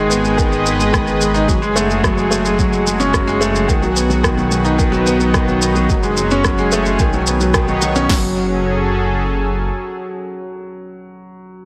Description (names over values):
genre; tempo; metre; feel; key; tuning
piano and strings electronica; 109 BPM; 4/4; straight; F# dorian; A4 = 440 Hz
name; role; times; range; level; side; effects
lush unison pad; sustained chords; 0.0-11.1 s; B2 to D#5; -24 LUFS; equal; chorus, sidechain pumping
felt-muted upright piano; riff; 0.0-11.7 s; D#3 to D#4; -19 LUFS; equal; digital delay
dark detuned saw bass; bass; 0.0-9.7 s; F#1 to B1; -24 LUFS; equal; sidechain pumping
electronic shaker and rim click; drums; 0.1-8.1 s; none; -24 LUFS; equal; none
deep house drum kit; drums; 0.4-8.2 s; crash cymbal, kick drum, snare drum; -21 LUFS; equal; none
room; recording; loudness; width
moderate concert hall reverb, RT60 2.2 s; none; -16 LUFS; mono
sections
0.0-8.1 A section; 8.1-10.3 B section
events
drop 0.0-8.1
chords
0.0 G#m; 1.5 F#madd9; 3.7 B; 5.9 F#madd9; 7.0 Badd9; 8.1 F#madd9